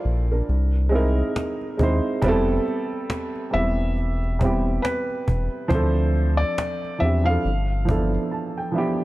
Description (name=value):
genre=lo-fi hip hop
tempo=69 BPM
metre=4/4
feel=swing 58% on 16ths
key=unclear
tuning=A4 = 440 Hz
part: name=dark upright piano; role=accompaniment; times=0.0-9.0 s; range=F3 to A5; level=-24 LUFS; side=right 2 dB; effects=low-pass filter
part: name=round analog bass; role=bass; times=0.1-8.2 s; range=E1 to E2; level=-22 LUFS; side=equal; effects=none
part: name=cajon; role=drums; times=0.1-8.1 s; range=none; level=-27 LUFS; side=equal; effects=none
part: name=felt-muted upright piano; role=melody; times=3.5-8.1 s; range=B4 to F5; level=-27 LUFS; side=left 1 dB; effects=low-pass filter
room=light reverb, small room ambience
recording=dark, warm production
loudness=-20 LUFS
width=side -17 dB against mid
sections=0.0-9.0 A section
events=upright piano fill 7.9-9.0; break 8.3-9.0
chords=0.5 C7alt; 2.2 Fmaj9#11; 5.7 Dm9; 7.4 G13